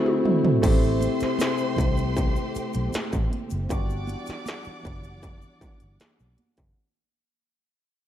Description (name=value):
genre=lush 1970s-style soul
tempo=78 BPM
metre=4/4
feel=straight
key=A dorian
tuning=A4 = 437 Hz
part: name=barky tine electric piano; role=accompaniment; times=0.0-6.8 s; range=A3 to G4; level=-26 LUFS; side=left 2 dB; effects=overdrive, phaser
part: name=dark studio string section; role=sustained chords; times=0.0-6.7 s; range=C3 to F#5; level=-36 LUFS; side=equal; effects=none
part: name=industrial drum kit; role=drums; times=0.1-6.8 s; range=crash cymbal, hi-hat, kick drum, snare drum, toms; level=-26 LUFS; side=equal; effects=distortion
part: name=rich studio violin section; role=second line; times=0.6-6.4 s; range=C5 to D6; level=-36 LUFS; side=right 1 dB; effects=slapback echo
part: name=vintage muted fingered electric bass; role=bass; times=0.6-6.7 s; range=F#1 to C2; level=-28 LUFS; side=equal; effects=none
part: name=congas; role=percussion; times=0.6-6.6 s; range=none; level=-37 LUFS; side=right 4 dB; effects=none
part: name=tube shaker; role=percussion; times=0.6-6.8 s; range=none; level=-46 LUFS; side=left 14 dB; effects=none
room=light reverb, small room ambience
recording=dark, warm production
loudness=-22 LUFS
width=side -10 dB against mid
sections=0.6-6.8 A section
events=drum fill 0.0-0.6; band accent 0.0-0.6; fade-out 0.6-6.8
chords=0.0 D9; 0.6 Am7; 3.7 Em9